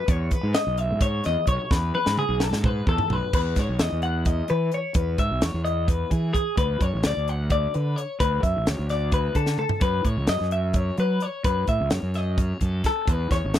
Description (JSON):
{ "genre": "math rock and midwest emo", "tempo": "258 BPM (eighths)", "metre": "7/8", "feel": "straight", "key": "E major", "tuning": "A4 = 440 Hz", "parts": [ { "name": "twelve-string electric guitar", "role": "arpeggios", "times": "0.0-13.6 s", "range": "G#4 to F#5", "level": "-26 LUFS", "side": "left 3 dB", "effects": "none" }, { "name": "fuzz fingered electric bass", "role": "bass", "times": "0.1-13.6 s", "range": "G#1 to F#3", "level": "-25 LUFS", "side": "right 1 dB", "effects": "overdrive" }, { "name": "crisp fusion drum kit", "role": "drums", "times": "0.1-13.6 s", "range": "crash cymbal, hi-hat, kick drum, snare drum, toms", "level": "-24 LUFS", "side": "equal", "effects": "none" } ], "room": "small room ambience", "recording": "dry, close 1970s-style studio recording", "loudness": "-21 LUFS", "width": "side -11 dB against mid", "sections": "0.0-3.3 A section; 3.3-13.6 B section", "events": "drum fill 1.7-3.3, 9.5-9.8", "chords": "0.1 E6; 1.7 E; 3.3 Emaj7; 6.6 Dmaj7; 9.8 F#m7; 13.1 C#m7", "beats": "| 0.09 0.32 0.56 0.79 1.02 1.25 1.48 | 1.71 1.94 2.17 2.41 2.64 2.87 3.10 | 3.33 3.56 3.80 4.03 4.26 4.49 4.72 | 4.96 5.19 5.42 5.65 5.88 6.12 6.35 | 6.58 6.81 7.04 7.28 7.51 7.74 7.97 | 8.21 8.44 8.67 8.90 9.13 9.37 9.60 | 9.83 10.06 10.29 10.53 10.76 10.99 11.22 | 11.46 11.69 11.92 12.15 12.38 12.62 12.85 | 13.08 13.31 13.54" }